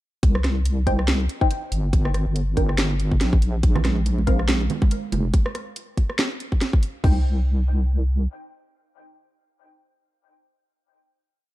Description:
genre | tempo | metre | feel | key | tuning
deep dubstep | 141 BPM | 4/4 | swing 57% on 16ths, half-time | C minor | A4 = 441 Hz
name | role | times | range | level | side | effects
deep soft wobble bass | bass | 0.2-8.3 s | F1 to C2 | -21 LUFS | equal | chorus
garage drum kit | drums | 0.2-7.2 s | crash cymbal, kick drum, toms | -19 LUFS | equal | overdrive, studio ambience
garage drum kit | drums | 0.2-6.9 s | hi-hat, rim click, snare drum | -26 LUFS | right 1 dB | overdrive, studio ambience
filtered dub chord stab | stabs | 0.9-4.3, 7.0-11.5 s | C4 to G5 | -30 LUFS | left 2 dB | phaser, wide subtle chorus, dub echo
congas and bongos | percussion | 3.8-5.2 s | none | -27 LUFS | right 5 dB | dub echo
room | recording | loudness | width
digital ambience | dark, warm production | -19 LUFS | side -16 dB against mid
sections
0.2-7.0 drop; 7.0-10.4 final chord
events
drop 0.2-7.0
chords
0.2 Cm; 1.9 Gm; 3.6 Bb5; 5.3 N.C.; 7.0 Cm

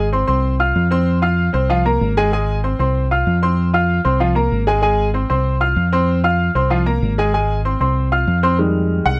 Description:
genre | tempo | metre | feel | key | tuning
latin, salsa | 192 BPM | 4/4 | straight | F minor | A4 = 440 Hz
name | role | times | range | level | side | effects
clear upright piano | accompaniment | 0.0-9.2 s | Eb3 to F6 | -20 LUFS | equal | none
fingered electric bass | bass | 0.0-9.2 s | Ab1 to F2 | -20 LUFS | equal | none
room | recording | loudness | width
little or no reverb | close, detailed microphones | -17 LUFS | mono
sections
0.0-8.6 A section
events
none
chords
0.4 F5; 1.7 C7sus4; 2.3 Ab; 2.9 F5; 4.2 C7sus4; 4.8 Ab; 5.5 F5; 6.7 C7sus4; 7.3 Ab; 8.0 Csus4; 8.6 Fm7

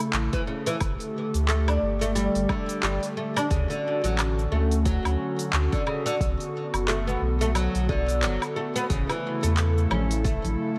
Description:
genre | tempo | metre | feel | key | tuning
organic downtempo | 89 BPM | 4/4 | swing 58% on 16ths | unclear | A4 = 440 Hz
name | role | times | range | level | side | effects
airy breathy pad | sustained chords | 0.0-10.8 s | C#3 to A4 | -33 LUFS | equal | chorus, sidechain pumping
oud | arpeggios | 0.0-10.8 s | C#3 to D4 | -31 LUFS | equal | delay
afro-pop drum kit | drums | 0.0-10.6 s | cabasa, handclaps, hi-hat, woodblock | -34 LUFS | equal | none
warm sub bass | bass | 0.1-10.6 s | F#1 to E2 | -28 LUFS | equal | sidechain pumping
electronic kick drum | drums | 0.3-10.4 s | none | -31 LUFS | equal | none
bongos and congas | percussion | 9.4-10.6 s | none | -36 LUFS | equal | none
room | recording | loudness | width
light reverb | worn, warbling old tape, cassette tape, warbly pitch drift | -25 LUFS | mono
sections
0.0-10.8 A section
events
none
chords
0.0 A; 0.8 Gsus2; 3.5 Dmaj7; 6.2 Bm7; 8.9 A

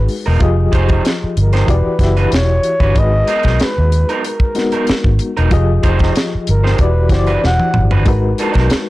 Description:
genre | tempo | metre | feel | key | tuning
R&B, neo-soul | 94 BPM | 4/4 | swing 54% on 16ths | unclear | A4 = 440 Hz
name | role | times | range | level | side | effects
breathy flugelhorn | melody | 0.0-7.9 s | A#4 to F#5 | -20 LUFS | equal | none
reed electric piano | accompaniment | 0.0-8.9 s | E3 to E5 | -20 LUFS | left 3 dB | medium tremolo
vintage muted fingered electric bass | bass | 0.0-8.8 s | E1 to D#2 | -14 LUFS | equal | tube saturation
tight funk drum kit | drums | 0.1-8.9 s | hi-hat, kick drum, snare drum, toms | -16 LUFS | equal | none
electric guitar through a small old amp | second line | 0.3-8.7 s | F#3 to C5 | -22 LUFS | right 4 dB | spring reverb
room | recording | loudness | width
light reverb | blown-out, overdriven recording, vinyl crackle, overdrive | -12 LUFS | side -18 dB against mid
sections
0.0-8.9 A section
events
drum fill 7.4-8.1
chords
0.4 Fm9; 1.7 Em9; 3.0 G#m9; 5.5 Fm9; 6.8 Em9; 8.1 G#m9

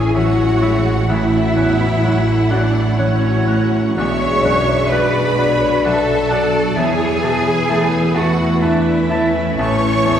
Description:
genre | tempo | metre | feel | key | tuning
cinematic | 64 BPM | 3/4 | rubato | unclear | A4 = 441 Hz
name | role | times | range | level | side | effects
rich symphonic violin section | melody | 0.0-10.2 s | B4 to F#5 | -28 LUFS | left 2 dB | none
flute section | second line | 0.0-10.2 s | C#5 to C#6 | -27 LUFS | left 1 dB | none
rich symphonic violin section | second line | 0.0-10.2 s | C#5 to C#6 | -28 LUFS | left 1 dB | none
bright grand piano | accompaniment | 0.0-10.2 s | A1 to C#5 | -24 LUFS | left 2 dB | none
warm symphonic viola section | accompaniment | 0.0-10.2 s | E3 to G#4 | -23 LUFS | right 2 dB | none
mellow French horn section | sustained chords | 0.0-10.2 s | E3 to E4 | -22 LUFS | left 4 dB | none
concert harp | arpeggios | 0.0-10.2 s | A2 to C#5 | -24 LUFS | left 3 dB | none
rich studio double bass section | bass | 0.0-10.2 s | A1 to E2 | -20 LUFS | right 2 dB | none
rich symphonic cello section | bass | 0.0-10.2 s | C#4 to C#5 | -20 LUFS | right 2 dB | none
warm oboe | second line | 0.1-10.2 s | E5 to A5 | -29 LUFS | right 1 dB | none
mellow clarinet | second line | 0.2-10.2 s | C#5 to E5 | -28 LUFS | left 1 dB | none
room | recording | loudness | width
wet scoring stage reverb, RT60 1.9 s | heard from further back in the room | -13 LUFS | side -9 dB against mid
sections
0.0-10.2 A section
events
none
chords
0.0 A; 1.1 F#m7/A; 4.0 Bmadd9; 6.8 Esus4; 9.6 A

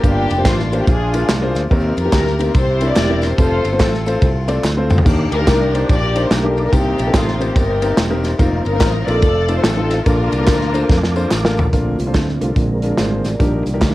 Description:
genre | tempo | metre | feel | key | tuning
uptempo gospel | 144 BPM | 4/4 | swing 63% on 8ths | Bb major | A4 = 440 Hz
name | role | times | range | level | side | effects
warm studio string section | melody | 0.0-11.3 s | Bb3 to D5 | -20 LUFS | left 1 dB | none
warm concert grand piano | accompaniment | 0.0-13.9 s | G2 to D5 | -21 LUFS | left 2 dB | cassette tape
fingered electric bass | bass | 0.0-13.9 s | E1 to F2 | -20 LUFS | equal | none
natural country drum kit | drums | 0.0-13.9 s | crash cymbal, hi-hat, kick drum, ride cymbal, snare drum, toms | -18 LUFS | equal | none
tambourine and handclaps | percussion | 0.0-13.9 s | none | -33 LUFS | right 2 dB | none
mellow tonewheel organ | sustained chords | 5.1-13.9 s | D3 to D6 | -26 LUFS | right 2 dB | slow rotary speaker, chorus vibrato, cassette tape
clear French horn section | sustained chords | 11.7-13.9 s | Eb3 to D5 | -32 LUFS | equal | cassette tape
room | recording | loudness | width
light reverb | home recording on cassette | -14 LUFS | side -17 dB against mid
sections
0.0-11.7 A section; 11.7-13.9 B section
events
drum fill 4.6-5.1, 10.9-11.7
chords
0.0 Gm7; 0.9 Bb7; 1.7 Eb6; 2.5 C9; 3.4 F; 5.1 Ebmaj7; 6.7 Cm7; 8.4 F7sus4; 9.2 F7; 10.1 Bbmaj7; 12.6 Bb7; 13.4 Ebmaj7/Bb

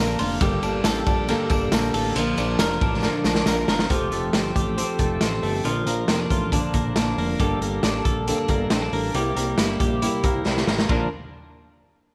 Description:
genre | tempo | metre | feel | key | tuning
jangly indie pop | 137 BPM | 4/4 | straight | Bb major | A4 = 438 Hz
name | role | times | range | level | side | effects
fingerpicked plugged-in steel-string acoustic guitar | accompaniment | 0.0-11.1 s | G2 to Bb4 | -29 LUFS | equal | none
twelve-string electric guitar | arpeggios | 0.0-11.1 s | F3 to Bb4 | -29 LUFS | equal | slapback echo
fat analog bass | bass | 0.0-11.1 s | F1 to C2 | -30 LUFS | equal | none
raw garage drum kit | drums | 0.2-11.0 s | crash cymbal, hi-hat, kick drum, ride cymbal, snare drum | -26 LUFS | equal | none
tambourine | percussion | 0.2-3.8 s | none | -43 LUFS | equal | none
room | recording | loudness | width
light reverb, small room ambience | none | -22 LUFS | mono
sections
0.0-3.9 A section; 3.9-10.9 B section; 10.9-12.1 C section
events
drum fill 3.0-3.9, 10.5-10.9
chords
0.4 Gmadd9; 2.2 Bb; 3.9 Fadd9; 5.6 Bb; 7.4 Gmadd9; 9.1 C7; 10.9 Bb

